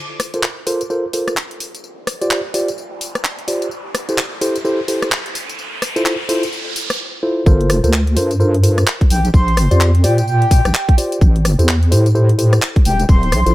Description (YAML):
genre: UK garage, two-step garage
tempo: 128 BPM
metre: 4/4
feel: swing 60% on 16ths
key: unclear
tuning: A4 = 439 Hz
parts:
  - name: riser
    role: sound effects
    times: 0.0-7.0 s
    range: none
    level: -28 LUFS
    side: right 1 dB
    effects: none
  - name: garage drum kit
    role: drums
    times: 0.2-13.5 s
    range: handclaps, hi-hat, rim click, tambourine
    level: -21 LUFS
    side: equal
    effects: none
  - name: mellow tine electric piano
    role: stabs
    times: 0.3-13.5 s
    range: E4 to D5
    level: -20 LUFS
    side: equal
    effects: dub echo
  - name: deep soft wobble bass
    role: bass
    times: 7.5-13.5 s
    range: D1 to Bb2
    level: -13 LUFS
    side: equal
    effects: chorus, sidechain pumping
  - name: electronic kick drum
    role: drums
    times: 7.5-13.2 s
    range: none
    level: -10 LUFS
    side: equal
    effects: none
  - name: breathy flute-like synth lead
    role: melody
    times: 9.1-13.5 s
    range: G5 to C6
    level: -22 LUFS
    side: left 1 dB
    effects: lush chorus, vintage 12-bit sampler grit, dub echo
room: little or no reverb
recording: none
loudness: -13 LUFS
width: side -16 dB against mid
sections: 0.0-7.5 A section; 7.5-13.5 B section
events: build-up 0.0-7.5; riser 0.0-7.0; drop 7.5-13.5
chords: 0.0 Fadd11; 1.6 Fsus2; 3.7 Am7; 5.6 Fmaj7/E; 7.5 Gm11; 9.1 Bb6; 11.2 Am7